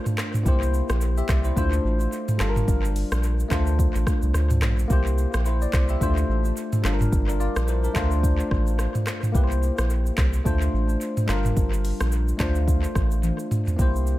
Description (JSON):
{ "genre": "afrobeats", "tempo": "108 BPM", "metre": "4/4", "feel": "swing 58% on 16ths", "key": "D minor", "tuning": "A4 = 441 Hz", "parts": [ { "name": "bell-like tine electric piano", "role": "accompaniment", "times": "0.0-14.2 s", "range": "G3 to E5", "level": "-28 LUFS", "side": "left 2 dB", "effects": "analog chorus, tape echo" }, { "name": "deep house drum kit", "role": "drums", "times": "0.1-14.2 s", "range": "handclaps, hi-hat, kick drum, rim click, shaker, toms", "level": "-25 LUFS", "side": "equal", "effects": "tape echo" }, { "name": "round analog bass", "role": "bass", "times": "0.5-14.1 s", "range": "G1 to D2", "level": "-23 LUFS", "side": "equal", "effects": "none" } ], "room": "digital ambience", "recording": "echo-heavy mix", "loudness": "-20 LUFS", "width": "side -16 dB against mid", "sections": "0.0-13.8 A section", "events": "drum fill 13.2-13.8", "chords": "0.5 C7; 1.6 Dm7; 2.4 Gm7; 3.5 Dm7; 4.9 C7; 6.0 Dm7; 6.8 Gm7; 8.0 Dm7; 9.3 C7; 10.5 Dm7; 11.3 Gm7; 12.4 Dm7", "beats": "| 0.46 1.01 1.57 2.12 | 2.68 3.23 3.79 4.34 | 4.90 5.46 6.01 6.57 | 7.12 7.68 8.23 8.79 | 9.35 9.90 10.46 11.01 | 11.57 12.12 12.68 13.23 | 13.79" }